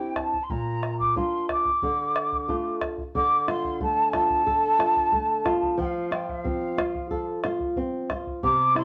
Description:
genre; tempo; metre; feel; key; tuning
andean folk, Andean ensemble; 91 BPM; 4/4; straight; D minor; A4 = 437 Hz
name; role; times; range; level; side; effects
mellow quena; melody; 0.0-8.8 s; F5 to D6; -26 LUFS; equal; none
flamenco guitar; accompaniment; 0.0-8.8 s; Bb2 to A4; -30 LUFS; equal; none
bombo; percussion; 0.2-8.8 s; none; -35 LUFS; equal; none
room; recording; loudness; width
moderate studio reverb, RT60 0.6 s; none; -25 LUFS; mono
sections
0.0-3.1 A section; 3.1-8.8 A section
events
none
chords
0.5 Bb; 1.8 Dm; 5.8 F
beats
| 0.49 1.16 1.82 2.48 | 3.15 3.81 4.47 5.13 | 5.79 6.45 7.11 7.77 | 8.43

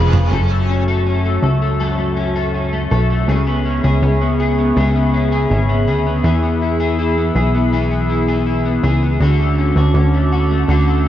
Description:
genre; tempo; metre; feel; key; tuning
dream pop; 81 BPM; 4/4; straight; unclear; A4 = 436 Hz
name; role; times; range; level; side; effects
overdriven electric guitar; accompaniment; 0.0-0.8 s; E#3 to G#4; -27 LUFS; right 2 dB; tremolo, analog chorus
hollow soft pad; sustained chords; 0.0-11.1 s; C#4 to E6; -22 LUFS; right 1 dB; chorus
electric guitar at the edge of break-up; arpeggios; 0.0-11.1 s; F#2 to B4; -18 LUFS; left 2 dB; analog chorus, analog delay
plucky analog bass; bass; 0.0-11.1 s; E#1 to E2; -16 LUFS; equal; none
room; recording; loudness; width
light reverb, digital ambience; cassette tape; -14 LUFS; side -12 dB against mid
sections
0.3-11.1 A section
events
none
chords
0.3 F#m7; 3.3 C#m7; 6.2 E; 9.2 Dmaj7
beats
| 0.32 1.06 1.80 2.54 | 3.28 4.02 4.76 5.50 | 6.25 6.99 7.73 8.47 | 9.21 9.95 10.69

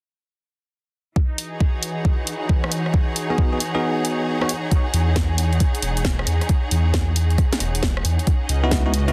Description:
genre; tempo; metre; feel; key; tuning
UK garage, two-step garage; 135 BPM; 4/4; swing 65% on 16ths; unclear; A4 = 440 Hz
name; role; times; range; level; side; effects
airy breathy pad; sustained chords; 1.5-4.7 s; E3 to D#5; -35 LUFS; equal; chorus, vintage 12-bit sampler grit, sidechain pumping
electronic kick drum; drums; 1.2-8.8 s; none; -22 LUFS; equal; overdrive
bright studio string section; texture; 1.2-9.1 s; E3 to F#5; -31 LUFS; equal; sidechain pumping
house drum kit; drums; 1.4-9.1 s; hi-hat, rim click, snare drum; -28 LUFS; equal; none
bell-like tine electric piano; stabs; 3.3-4.5, 8.6-9.1 s; B3 to C#5; -26 LUFS; equal; dub echo
dark detuned saw bass; bass; 4.9-9.1 s; E1 to E2; -22 LUFS; equal; none
room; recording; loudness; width
little or no reverb; dense, heavily limited modern master; -21 LUFS; mono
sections
1.2-4.7 A section; 4.7-9.1 B section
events
filter sweep on analog synth pad 1.2-4.7; kick drops out 3.8-4.7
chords
1.2 Emaj9; 8.3 C#m11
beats
| 1.16 1.60 2.05 2.49 | 2.94 3.38 3.83 4.27 | 4.71 5.16 5.60 6.05 | 6.49 6.94 7.38 7.83 | 8.27 8.71

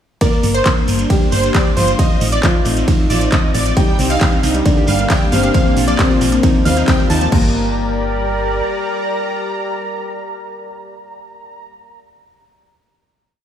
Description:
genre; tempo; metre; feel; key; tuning
uplifting trance; 135 BPM; 4/4; straight; G minor; A4 = 440 Hz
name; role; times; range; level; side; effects
supersaw stab; melody; 0.2-11.6 s; C5 to Bb5; -22 LUFS; right 1 dB; sidechain pumping, tape echo
dark grand piano; second line; 0.2-11.9 s; C3 to Bb4; -20 LUFS; left 2 dB; tape echo
lush unison pad; sustained chords; 0.2-11.6 s; C3 to D5; -22 LUFS; equal; chorus, sidechain pumping
electronic kick drum; drums; 0.2-7.4 s; none; -15 LUFS; equal; overdrive
techno drum kit; drums; 0.2-7.4 s; crash cymbal, handclaps, hi-hat, ride cymbal; -23 LUFS; equal; none
shekere; percussion; 0.2-7.3 s; none; -29 LUFS; right 4 dB; none
solid FM bass; bass; 0.4-8.6 s; G1 to Eb2; -19 LUFS; equal; tube saturation, sidechain pumping
wide unison pluck; arpeggios; 3.8-7.5 s; F3 to G4; -22 LUFS; right 2 dB; sidechain pumping, tape echo
room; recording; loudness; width
moderate lush hall reverb, RT60 2.2 s; dreamy mix soaked in reverb, studio reverb; -13 LUFS; side -9 dB against mid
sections
0.2-7.3 drop; 7.3-10.9 final chord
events
drop 0.2-7.3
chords
0.2 Gm; 2.0 Adim; 3.8 Cmadd9; 4.7 Gm; 5.5 Bb; 6.4 Ebadd9; 7.3 Gm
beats
| 0.21 0.66 1.10 1.54 | 1.99 2.43 2.88 3.32 | 3.77 4.21 4.66 5.10 | 5.54 5.99 6.43 6.88 | 7.32 7.77 8.21 8.66 | 9.10 9.54 9.99 10.43

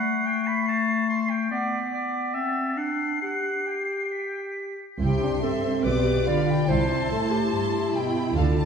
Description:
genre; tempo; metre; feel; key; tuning
quick classical-period movement for symphony orchestra; 132-148 BPM; 4/4; rubato; G major, C major from 5.0 s; A4 = 444 Hz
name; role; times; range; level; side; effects
clear oboe; second line; 0.0-4.6 s; D5 to C6; -30 LUFS; equal; none
silver concert flute; second line; 0.0-4.8 s; A6 to C7; -31 LUFS; left 2 dB; none
warm clarinet; second line; 0.0-8.7 s; A3 to D5; -27 LUFS; left 3 dB; none
warm studio violin section; melody; 5.0-8.7 s; A5 to D6; -36 LUFS; left 2 dB; none
warm studio violin section; second line; 5.0-8.7 s; D5 to A5; -32 LUFS; left 2 dB; none
warm studio viola section; accompaniment; 5.0-8.7 s; C4 to G4; -28 LUFS; right 2 dB; none
dark studio double bass section; bass; 5.0-8.7 s; B1 to D2; -27 LUFS; right 3 dB; none
warm studio cello section; bass; 5.0-8.7 s; G2 to D3; -26 LUFS; right 1 dB; none
room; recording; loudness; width
wet scoring stage reverb, RT60 1.9 s; heard from further back in the room; -23 LUFS; side -6 dB against mid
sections
0.0-5.0 A section; 5.0-8.7 B section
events
none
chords
0.0 Am; 1.5 N.C.; 2.3 Am/C; 2.8 D7; 3.2 G; 5.0 C; 5.9 G7/B; 6.7 C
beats
0.25 0.66 1.08 | 1.50 1.92 2.34 2.76 | 3.21 3.66 4.12 4.57 | 5.01 5.44 5.86 6.28 | 6.70 7.11 7.52 7.94 | 8.35

